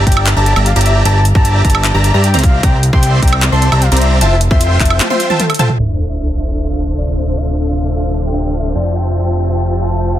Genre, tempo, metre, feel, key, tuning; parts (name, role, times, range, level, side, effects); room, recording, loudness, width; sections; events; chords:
future bass; 152 BPM; 4/4; half-time; A4 = 440 Hz
wide unison pluck; arpeggios; 0.0-5.7 s; A5 to C6; -24 LUFS; equal; sidechain pumping
dense compressed supersaw; riff; 0.0-10.2 s; C4 to C6; -18 LUFS; right 1 dB; vintage 12-bit sampler grit, sidechain pumping, low-pass filter
fat analog bass; bass; 0.0-10.2 s; D1 to G2; -14 LUFS; equal; sidechain pumping
soft octave-layered synth lead; melody; 0.1-10.2 s; A4 to Bb5; -21 LUFS; left 2 dB; chorus, tremolo, sidechain pumping, digital delay
big-room dance drum kit; drums; 0.1-5.8 s; handclaps, hi-hat, toms, woodblock; -17 LUFS; right 1 dB; overdrive
electronic kick drum; drums; 0.1-4.9 s; -12 LUFS; equal
shimmering ambient pad; sustained chords; 6.4-10.2 s; C3 to E5; -25 LUFS; left 1 dB; chorus, built-in reverb, sidechain pumping
sub drop; sound effects; 5.8-7.4 s; -20 LUFS; equal
little or no reverb; dense, heavily limited modern master, low-pass filter; -11 LUFS; side -12 dB against mid
0.0-5.8 A section; 5.8-10.2 B section
drop 0.0-5.8; drum fill 5.0-5.8; impact 5.8-7.4; filter sweep 5.8-10.2
0.0 Gm69; 2.4 C9; 4.2 Fmaj7; 5.8 Dm9; 8.8 Fmaj9